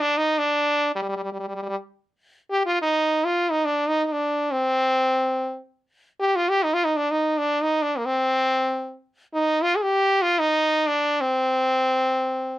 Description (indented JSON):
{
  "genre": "Arabic maqam ensemble",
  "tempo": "free time",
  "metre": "none",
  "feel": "none",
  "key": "unclear",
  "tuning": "A4 = 440 Hz",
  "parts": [
    { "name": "stopped French horn", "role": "solo", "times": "0.0-12.6 s", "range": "G3 to Ab4+50c", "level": "-20 LUFS", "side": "equal", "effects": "none" }
  ],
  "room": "light reverb",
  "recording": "close, detailed microphones",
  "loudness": "-20 LUFS",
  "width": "side -15 dB against mid",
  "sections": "0.0-2.2 A section; 2.2-12.6 A section",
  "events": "none",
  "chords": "none",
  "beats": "free time"
}